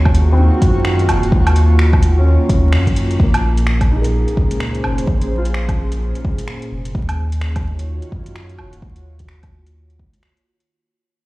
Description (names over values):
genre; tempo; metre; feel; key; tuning
future garage; 128 BPM; 4/4; swing 61% on 16ths; unclear; A4 = 437 Hz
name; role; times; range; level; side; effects
felt-muted upright piano; accompaniment; 0.0-7.0 s; Bb3 to Bb4; -25 LUFS; left 1 dB; sidechain pumping, analog delay
airy breathy pad; sustained chords; 0.0-10.7 s; Bb2 to Db6; -23 LUFS; equal; chorus, sidechain pumping
warm sub bass; bass; 0.0-10.2 s; Eb1 to Gb2; -15 LUFS; equal; sidechain pumping
deep house drum kit; drums; 0.1-10.7 s; finger snaps, hi-hat, woodblock; -25 LUFS; right 1 dB; overdrive, vintage 12-bit sampler grit
electronic kick drum; drums; 0.1-10.1 s; none; -16 LUFS; equal; overdrive, vintage 12-bit sampler grit
room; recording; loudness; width
little or no reverb; played on a big sound system in a bare room, large studio reverb, vinyl crackle; -13 LUFS; side -20 dB against mid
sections
0.0-3.2 A section; 3.2-10.7 B section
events
band accent 2.7; fade-out 3.2-10.7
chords
0.0 Ebm7; 3.2 Bbm7; 6.9 Ebm7